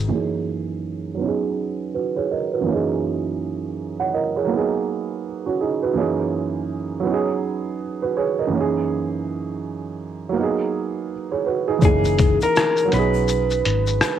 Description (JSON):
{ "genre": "lo-fi hip hop", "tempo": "82 BPM", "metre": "4/4", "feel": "swing 60% on 16ths", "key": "unclear", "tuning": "A4 = 442 Hz", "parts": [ { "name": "dark upright piano", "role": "accompaniment", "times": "0.0-14.2 s", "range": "F#2 to F#5", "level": "-22 LUFS", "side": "right 6 dB", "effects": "cassette tape, low-pass filter" }, { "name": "vintage muted fingered electric bass", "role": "bass", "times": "0.0-0.1, 11.8-14.0 s", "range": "F#1 to B1", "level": "-22 LUFS", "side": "left 2 dB", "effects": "none" }, { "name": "electric guitar through a small old amp", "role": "melody", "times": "11.8-14.2 s", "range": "G#4 to B4", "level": "-21 LUFS", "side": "left 1 dB", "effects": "low-pass filter, cassette tape, tape echo" }, { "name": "trip hop sampler-style drum kit", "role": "drums", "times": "11.8-14.2 s", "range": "hi-hat, kick drum, rim click, shaker", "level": "-19 LUFS", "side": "left 2 dB", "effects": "none" }, { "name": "egg shaker", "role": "percussion", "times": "11.8-14.2 s", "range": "none", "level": "-42 LUFS", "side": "left 17 dB", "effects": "none" } ], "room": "light reverb, digital ambience", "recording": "home recording on cassette", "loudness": "-20 LUFS", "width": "side -10 dB against mid", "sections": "0.1-11.8 A section; 11.8-14.2 B section", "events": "filter sweep on upright piano 0.1-11.8", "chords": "0.1 F#13; 1.2 B6; 2.7 F#13; 4.5 G#m9; 6.0 F#13; 7.1 B6; 8.5 F#13; 10.4 G#m9; 11.8 F#13; 12.9 B6", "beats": "| 0.12 0.85 1.58 2.31 | 3.04 3.77 4.51 5.24 | 5.97 6.70 7.43 8.17 | 8.90 9.63 10.36 11.09 | 11.82 12.56 13.29 14.02" }